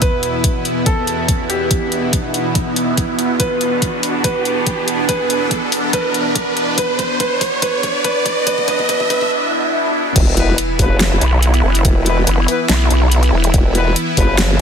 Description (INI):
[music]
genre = heavy wobble dubstep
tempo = 142 BPM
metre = 4/4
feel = half-time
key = unclear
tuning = A4 = 440 Hz
[part]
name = clear baby grand piano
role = melody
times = 0.0-9.3 s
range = G4 to B4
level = -21 LUFS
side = right 2 dB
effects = ping-pong delay
[part]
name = supersaw pad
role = sustained chords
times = 0.0-14.6 s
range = E2 to E4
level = -20 LUFS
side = equal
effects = phaser, sidechain pumping
[part]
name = dubstep drum kit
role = drums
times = 0.0-14.5 s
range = crash cymbal, hi-hat, snare drum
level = -20 LUFS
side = left 2 dB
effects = overdrive
[part]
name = electronic kick drum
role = drums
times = 0.0-14.3 s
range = none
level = -18 LUFS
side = equal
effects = overdrive
[part]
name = riser, swell and sub drop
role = sound effects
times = 0.3-11.8 s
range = none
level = -22 LUFS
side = right 1 dB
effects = none
[part]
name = formant-sweep wobble bass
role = bass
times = 10.2-14.6 s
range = E1 to F#1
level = -16 LUFS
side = equal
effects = chorus, overdrive
[part]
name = dark brass ensemble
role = stabs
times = 10.4-14.3 s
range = B3 to B4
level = -23 LUFS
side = left 4 dB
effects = ping-pong delay
[part]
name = vowel-sweep wobble bass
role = bass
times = 11.2-13.5 s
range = E1 to B1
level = -13 LUFS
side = equal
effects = chorus, overdrive
[sound]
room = moderate lush hall reverb, RT60 1.9 s, digital ambience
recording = dense, heavily limited modern master, high-pass filter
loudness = -13 LUFS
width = side -7 dB against mid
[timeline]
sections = 0.0-10.2 A section; 10.2-14.6 B section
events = build-up 0.0-10.2; riser 0.3-9.3; drum fill 3.4-9.3; swell 9.3-10.2; drop 10.2-14.6; impact 10.2-11.8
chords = 0.0 E5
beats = | 0.02 0.44 0.86 1.28 | 1.71 2.13 2.55 2.98 | 3.40 3.82 4.24 4.67 | 5.09 5.51 5.93 6.36 | 6.78 7.20 7.62 8.04 | 8.47 8.89 9.31 9.74 | 10.16 10.58 11.00 11.43 | 11.85 12.27 12.69 13.12 | 13.54 13.96 14.38